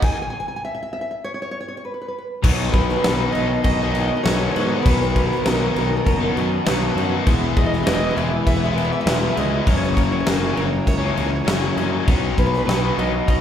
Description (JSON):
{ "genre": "post-rock", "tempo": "100 BPM", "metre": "4/4", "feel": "straight", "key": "unclear", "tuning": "A4 = 440 Hz", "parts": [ { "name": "nylon-string guitar", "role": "melody", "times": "0.0-13.4 s", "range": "A#4 to G#5", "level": "-26 LUFS", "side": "right 1 dB", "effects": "none" }, { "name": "twelve-string electric guitar", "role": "arpeggios", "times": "0.0-13.4 s", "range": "E2 to G#4", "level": "-29 LUFS", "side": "left 2 dB", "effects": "none" }, { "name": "twelve-string electric guitar", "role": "arpeggios", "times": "0.0-13.4 s", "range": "B3 to A#5", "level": "-34 LUFS", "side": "right 4 dB", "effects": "none" }, { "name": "huge arena drum kit", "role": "drums", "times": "0.0-13.4 s", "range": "crash cymbal, kick drum, snare drum", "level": "-22 LUFS", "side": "equal", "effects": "none" }, { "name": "pedal harmonium", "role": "sustained chords", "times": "2.4-13.4 s", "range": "D#3 to A#5", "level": "-29 LUFS", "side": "right 2 dB", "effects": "none" }, { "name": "distorted electric guitar", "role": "riff", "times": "2.4-13.4 s", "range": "F#2 to E4", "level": "-24 LUFS", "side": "left 5 dB", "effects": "distortion" }, { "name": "fuzz picked electric bass", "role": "bass", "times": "2.4-13.4 s", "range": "E1 to G#2", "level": "-24 LUFS", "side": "equal", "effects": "overdrive" } ], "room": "wet recital hall reverb, RT60 1.4 s", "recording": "recorded in a church or concert hall", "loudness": "-17 LUFS", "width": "side -9 dB against mid", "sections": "0.0-2.4 A section; 2.4-13.4 B section", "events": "build-up 0.0-2.4; stop 0.0-2.4", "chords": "0.0 N.C.; 2.4 Bmaj7; 7.3 Emaj7; 9.7 F#7; 12.1 Bmaj7" }